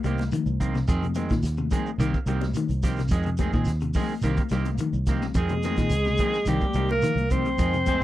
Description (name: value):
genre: afrobeat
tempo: 107 BPM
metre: 4/4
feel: straight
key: F minor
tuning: A4 = 439 Hz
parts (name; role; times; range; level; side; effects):
- semi-hollow electric guitar; arpeggios; 0.0-7.9 s; C3 to G3; -31 LUFS; left 4 dB; none
- fingered electric bass; bass; 0.0-8.0 s; C2 to Bb2; -26 LUFS; equal; none
- shekere; percussion; 0.0-8.0 s; none; -32 LUFS; right 3 dB; none
- electric guitar at the edge of break-up; stabs; 0.1-8.0 s; Eb3 to Ab4; -31 LUFS; right 5 dB; none
- vintage drum kit; drums; 0.1-8.0 s; hi-hat, kick drum, snare drum; -28 LUFS; equal; none
- congas; percussion; 0.2-8.0 s; none; -33 LUFS; left 10 dB; none
- breathy alto saxophone; melody; 5.4-8.0 s; G4 to C5; -26 LUFS; left 1 dB; none
- dark trombone; second line; 5.4-8.0 s; G3 to C4; -31 LUFS; right 4 dB; none
- raspy baritone saxophone; second line; 7.9-8.0 s; C4; -30 LUFS; left 7 dB; none
room: little or no reverb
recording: dry, close 1970s-style studio recording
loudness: -22 LUFS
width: side -14 dB against mid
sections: 0.0-8.0 A section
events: none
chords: 0.0 Cm7; 0.9 Fm7; 2.0 Cm7; 3.1 Fm7; 4.2 Cm7; 5.4 Fm7; 6.5 Cm7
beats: 0.33 | 0.89 1.44 2.00 2.56 | 3.12 3.68 4.24 4.80 | 5.36 5.92 6.47 7.03 | 7.59